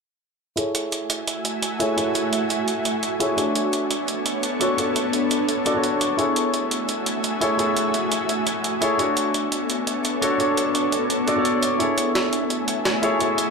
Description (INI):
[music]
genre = liquid drum and bass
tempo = 171 BPM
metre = 4/4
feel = swing 54% on 16ths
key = F# minor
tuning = A4 = 440 Hz
[part]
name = warm grand piano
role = accompaniment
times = 0.6-13.5 s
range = D4 to D5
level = -23 LUFS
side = left 1 dB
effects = low-pass filter, ping-pong delay
[part]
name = ethereal airy pad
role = sustained chords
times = 1.0-13.5 s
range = A3 to G#5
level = -24 LUFS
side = equal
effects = ensemble chorus, built-in reverb
[part]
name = jungle sampler-style drum kit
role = drums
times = 0.6-13.5 s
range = hi-hat, snare drum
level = -27 LUFS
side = right 2 dB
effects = none
[sound]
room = moderate digital room reverb, RT60 1.1 s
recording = none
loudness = -20 LUFS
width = side -4 dB against mid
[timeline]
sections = 0.6-13.5 A section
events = filter sweep on grand piano 0.6-13.5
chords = 0.6 F#m9; 3.4 Bm9; 6.2 F#m9; 9.0 Bm9; 11.8 F#m9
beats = | 0.57 0.92 1.27 1.62 | 1.98 2.33 2.68 3.03 | 3.38 3.73 4.08 4.43 | 4.78 5.13 5.49 5.84 | 6.19 6.54 6.89 7.24 | 7.59 7.94 8.29 8.64 | 8.99 9.35 9.70 10.05 | 10.40 10.75 11.10 11.45 | 11.80 12.15 12.50 12.85 | 13.20